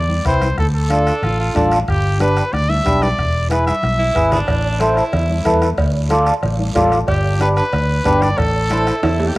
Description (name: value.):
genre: latin, cumbia.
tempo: 185 BPM.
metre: 4/4.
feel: straight.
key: A minor.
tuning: A4 = 440 Hz.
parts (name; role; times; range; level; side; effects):
bright trumpet; melody; 0.0-4.3, 7.1-9.4 s; G4 to E5; -21 LUFS; equal; cassette tape.
fingered electric bass; bass; 0.0-9.4 s; E1 to E2; -18 LUFS; equal; none.
congas; percussion; 0.1-9.4 s; none; -28 LUFS; left 2 dB; none.
mellow accordion; accompaniment; 0.3-9.4 s; C4 to D5; -18 LUFS; equal; cassette tape.
bombo; percussion; 0.3-9.4 s; none; -24 LUFS; left 1 dB; none.
guiro; percussion; 0.3-9.4 s; none; -34 LUFS; right 3 dB; none.
edgy tenor saxophone; second line; 1.1-1.8, 4.0-5.6, 8.7-9.4 s; C4 to G4; -24 LUFS; right 2 dB; cassette tape.
cowbell and timbales; percussion; 4.5-9.4 s; none; -25 LUFS; right 3 dB; none.
room: light reverb.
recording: home recording on cassette.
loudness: -14 LUFS.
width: side -20 dB against mid.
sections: 0.0-9.4 A section.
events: drum fill 3.7-4.5, 9.0-9.4.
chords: 0.0 Am (rootless); 0.6 Dm; 1.9 G; 3.2 E7; 4.5 Am; 5.8 Dm; 7.1 G; 8.4 Am.